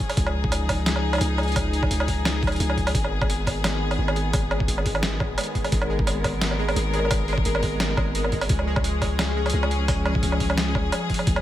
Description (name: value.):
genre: half-time drum and bass.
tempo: 173 BPM.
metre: 4/4.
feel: swing 54% on 16ths, half-time.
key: G# dorian.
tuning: A4 = 440 Hz.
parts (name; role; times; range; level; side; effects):
warm chamber string section; sustained chords; 0.0-11.4 s; D#3 to A#4; -28 LUFS; left 2 dB; sidechain pumping.
boom bap sampler-style drum kit; drums; 0.0-11.4 s; hi-hat, snare drum, woodblock; -27 LUFS; right 1 dB; overdrive, small room reverb.
electronic kick drum; drums; 0.0-11.3 s; none; -26 LUFS; equal; overdrive, small room reverb.
long sustained 808-style bass; bass; 0.2-11.4 s; G#1 to C#2; -26 LUFS; equal; none.
pulsing gated texture; texture; 3.3-11.4 s; G#3 to G#4; -32 LUFS; equal; chorus, built-in reverb.
room: light reverb.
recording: none.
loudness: -21 LUFS.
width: side -13 dB against mid.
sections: 0.0-11.4 A section.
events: none.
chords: 0.0 C#; 2.9 G#m; 8.5 C#.